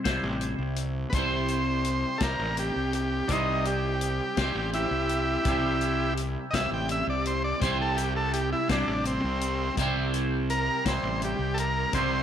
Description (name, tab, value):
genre	psychedelic rock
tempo	56 BPM (dotted quarters)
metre	6/8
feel	straight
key	C major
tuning	A4 = 443 Hz
part	twangy electric guitar	riff	0.0-12.2 s	C3 to C5	-30 LUFS	right 1 dB	phaser, double-tracked left and right
part	fuzz fingered electric bass	bass	0.1-12.2 s	A1 to C2	-31 LUFS	equal	overdrive
part	vintage drum kit	drums	0.1-12.1 s	hi-hat, kick drum, snare drum	-33 LUFS	left 3 dB	none
part	combo organ	melody	1.1-12.2 s	C4 to G5	-29 LUFS	equal	slapback echo
room	light reverb, studio ambience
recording	1960s-style stereo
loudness	-25 LUFS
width	side -9 dB against mid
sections	0.0-12.2 A section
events	transistor combo organ solo 0.0-12.2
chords	0.0 C